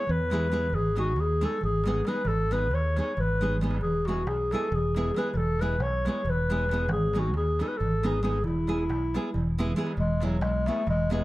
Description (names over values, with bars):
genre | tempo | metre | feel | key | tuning
balkan folk, Balkan wedding band | 273 BPM (eighths) | 7/8 | straight | E major | A4 = 440 Hz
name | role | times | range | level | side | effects
dark clarinet | melody | 0.0-11.2 s | F#3 to C#5 | -29 LUFS | left 1 dB | plate reverb, tape echo
nylon-string guitar | accompaniment | 0.0-11.2 s | G#3 to G#4 | -32 LUFS | right 1 dB | none
fingered electric bass | bass | 0.1-11.2 s | E1 to E2 | -28 LUFS | equal | none
darbuka | percussion | 0.1-11.2 s | none | -33 LUFS | right 1 dB | none
room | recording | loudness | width
light reverb | dark, warm production | -24 LUFS | side -17 dB against mid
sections
0.0-10.0 A section; 10.0-11.2 A section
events
drum fill 3.4-3.8, 9.5-10.0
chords
0.0 E; 0.7 G#m; 3.8 E; 6.9 G#m; 8.4 E